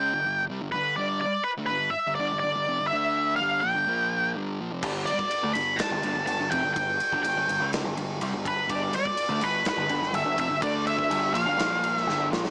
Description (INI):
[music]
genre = quiet-loud alternative rock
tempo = 124 BPM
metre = 4/4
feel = straight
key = unclear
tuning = A4 = 439 Hz
[part]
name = octave-fuzz lead guitar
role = melody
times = 0.0-12.3 s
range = B4 to B5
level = -28 LUFS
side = equal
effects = distortion
[part]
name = thick fuzz guitar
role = riff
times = 0.0-12.5 s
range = F2 to D4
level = -35 LUFS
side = equal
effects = distortion
[part]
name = crunchy overdriven guitar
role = riff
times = 4.8-12.5 s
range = F2 to D4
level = -38 LUFS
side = equal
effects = none
[part]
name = growling picked electric bass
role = bass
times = 4.8-12.5 s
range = F1 to D2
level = -37 LUFS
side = equal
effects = overdrive
[part]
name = big rock drum kit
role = drums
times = 4.8-12.5 s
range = crash cymbal, kick drum, ride cymbal, snare drum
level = -35 LUFS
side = equal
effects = none
[sound]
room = light reverb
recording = small speaker sound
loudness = -27 LUFS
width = mono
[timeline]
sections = 0.0-12.5 A section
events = drum fill 12.1-12.5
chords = 0.0 G5; 2.9 D5; 3.4 G5; 3.9 Bb5; 4.3 G5; 10.6 D5; 11.1 G5; 11.6 Bb5